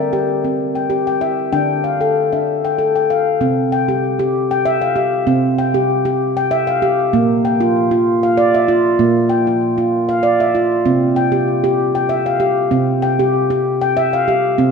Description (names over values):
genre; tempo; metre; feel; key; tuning
world meditative, meditative tuned percussion; 97 BPM; 3/4; swing 54% on 16ths; unclear; A4 = 440 Hz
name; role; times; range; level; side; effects
handpan; solo; 0.0-14.7 s; Bb2 to G5; -14 LUFS; equal; ping-pong delay
room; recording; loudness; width
wet echo chamber reverb, RT60 1.9 s, studio ambience; none; -14 LUFS; side -5 dB against mid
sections
0.0-3.4 A section; 3.4-14.7 B section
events
none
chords
0.0 C/D; 1.5 Dm; 3.4 C; 7.1 Bb; 10.9 C